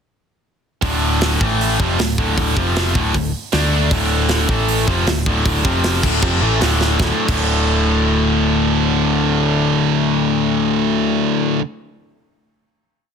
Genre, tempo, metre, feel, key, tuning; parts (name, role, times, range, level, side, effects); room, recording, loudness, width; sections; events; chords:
hard rock; 156 BPM; 4/4; straight; A4 = 441 Hz
biting overdriven guitar; riff; 0.8-11.6 s; D2 to D4; -19 LUFS; left 10 dB
high-gain distorted guitar; riff; 0.8-11.6 s; D2 to D4; -19 LUFS; right 14 dB; distortion
hollow-body short-scale picked electric bass; bass; 0.8-11.6 s; D1 to D2; -21 LUFS; equal
tight metal drum kit; drums; 0.8-7.4 s; crash cymbal, hi-hat, kick drum, snare drum; -21 LUFS; right 1 dB; soft clipping on kick
small room ambience; dense, heavily limited modern master; -14 LUFS; side -7 dB against mid
0.8-7.0 riff; 7.0-10.1 final chord
drum fill 6.8
0.8 D5; 1.4 A5; 1.8 D5; 2.6 F5; 3.0 D5; 4.5 A5; 4.9 D5; 5.7 F5; 6.0 D5